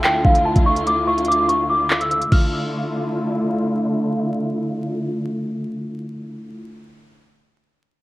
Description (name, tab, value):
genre	hip hop, drill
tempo	145 BPM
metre	4/4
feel	half-time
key	D harmonic minor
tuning	A4 = 440 Hz
part	worn celesta	melody	0.0-3.7 s	F5 to F6	-19 LUFS	equal	low-pass filter, cassette tape, plate reverb, tape echo
part	dark studio string section	sustained chords	0.0-6.6 s	D2 to F4	-22 LUFS	equal	low-pass filter, cassette tape
part	drill drum kit	drums	0.0-2.4 s	crash cymbal, handclaps, hi-hat, kick drum	-18 LUFS	equal	cassette tape
room	light reverb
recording	home recording on cassette, vinyl crackle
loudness	-17 LUFS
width	side -18 dB against mid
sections	0.0-2.5 A section; 2.5-5.8 B section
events	break 0.9-2.5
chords	0.0 Dmadd9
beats	0.04 0.46 | 0.87 1.28 1.70 2.11 | 2.52 2.94 3.35 3.77 | 4.18 4.59 5.01 5.42